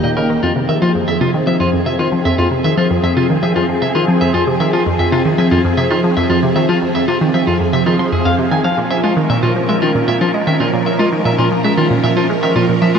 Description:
ambient, sequencer-driven space music; 115 BPM; 4/4; straight; F minor; A4 = 442 Hz
phased string machine; sustained chords; 0.0-13.0 s; Eb3 to Bb4; -16 LUFS; right 1 dB; ensemble chorus, phaser
clean electric guitar; arpeggios; 0.0-13.0 s; F4 to C6; -18 LUFS; equal; auto-pan, analog delay
analog pluck; riff; 0.0-13.0 s; F2 to Ab3; -16 LUFS; equal; chorus, analog delay
wet huge ambient reverb, RT60 8.3 s; -12 LUFS; side -6 dB against mid
0.4-13.0 A section
0.4 Fm; 8.8 Bbm
| 0.43 0.95 1.47 1.99 | 2.52 3.04 3.56 4.08 | 4.60 5.12 5.65 6.17 | 6.69 7.21 7.73 8.25 | 8.78 9.30 9.82 10.34 | 10.86 11.38 11.91 12.43 | 12.95

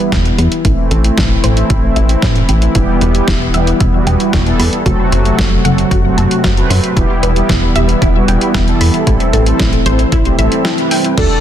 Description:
synthwave; 114 BPM; 4/4; straight; A4 = 440 Hz
brassy analog pad; sustained chords; 0.0-11.4 s; C3 to F#4; -16 LUFS; equal; chorus, sidechain pumping
wide unison pluck; arpeggios; 0.0-11.4 s; D4 to C6; -22 LUFS; left 1 dB; ping-pong delay
chorused synth bass; bass; 0.1-11.3 s; E1 to A2; -14 LUFS; equal; sidechain pumping
clean 12-bit digital drum machine; drums; 0.1-11.3 s; crash cymbal, hi-hat, snare drum; -20 LUFS; equal
electronic kick drum; drums; 0.1-11.3 s; -17 LUFS; equal; overdrive
mellow synth brass; stabs; 2.8-11.4 s; E3 to B4; -18 LUFS; right 3 dB; chorus, cassette tape, ping-pong delay
soft supersaw; melody; 11.2-11.4 s; A4; -17 LUFS; equal; cassette tape
soft synth bell; second line; 11.2-11.4 s; A4; -20 LUFS; right 3 dB
light reverb; dense, heavily limited modern master; -10 LUFS; side -10 dB against mid
0.0-11.2 A section
filter sweep on synth arpeggio sound 0.0-11.2
0.0 Em; 0.6 Am; 2.8 Em; 4.9 F#dim; 7.0 Em; 9.1 Am7
0.12 | 0.65 1.18 1.70 2.23 | 2.75 3.28 3.81 4.33 | 4.86 5.39 5.91 6.44 | 6.96 7.49 8.02 8.54 | 9.07 9.60 10.12 10.65 | 11.18

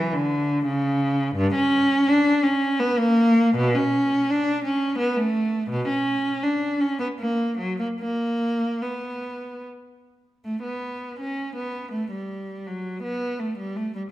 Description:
classical, baroque-style suite movement for unaccompanied cello; 72-87 BPM; 3/4; rubato; A4 = 440 Hz
rich cello; solo; 0.0-14.0 s; G2 to D4; -21 LUFS; equal
wet recital hall reverb, RT60 1.5 s; minimal, uncompressed stereo recording; -21 LUFS; side -15 dB against mid
0.0-10.4 A section; 10.4-14.1 A section
0.66 | 1.37 2.09 2.80 | 3.56 4.29 4.99 | 5.70 6.42 7.18 | 7.98 8.81 9.63 | 10.44 11.19 11.93 | 12.66 13.40

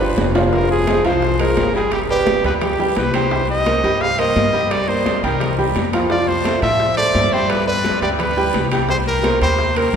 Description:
latin, salsa; 172 BPM; 4/4; straight; C minor; A4 = 441 Hz
bright trumpet; melody; 0.0-10.0 s; G4 to F5; -19 LUFS; equal
bright upright piano; accompaniment; 0.0-10.0 s; F3 to G5; -19 LUFS; right 2 dB
upright bass; bass; 0.0-10.0 s; F1 to A2; -22 LUFS; left 1 dB
congas; percussion; 0.0-9.9 s; -26 LUFS; left 2 dB
timbales; percussion; 0.0-10.0 s; -28 LUFS; right 2 dB
bongos; percussion; 0.2-10.0 s; -29 LUFS; left 3 dB
guiro; percussion; 0.2-10.0 s; -36 LUFS; left 4 dB
wet cathedral reverb, RT60 5.9 s; recorded in a church or concert hall; -15 LUFS; side -7 dB against mid
0.5-10.0 A section
drum fill 0.0-0.5
0.0 G7; 0.5 Fm; 1.9 G; 3.3 Cm7; 4.7 Gm; 5.4 C5; 6.1 Fmaj7; 7.5 G; 8.9 Cm7
0.18 | 0.53 0.88 1.22 1.57 | 1.92 2.27 2.62 2.97 | 3.31 3.66 4.01 4.36 | 4.71 5.06 5.41 5.75 | 6.10 6.45 6.80 7.15 | 7.50 7.84 8.19 8.54 | 8.89 9.24 9.58 9.93

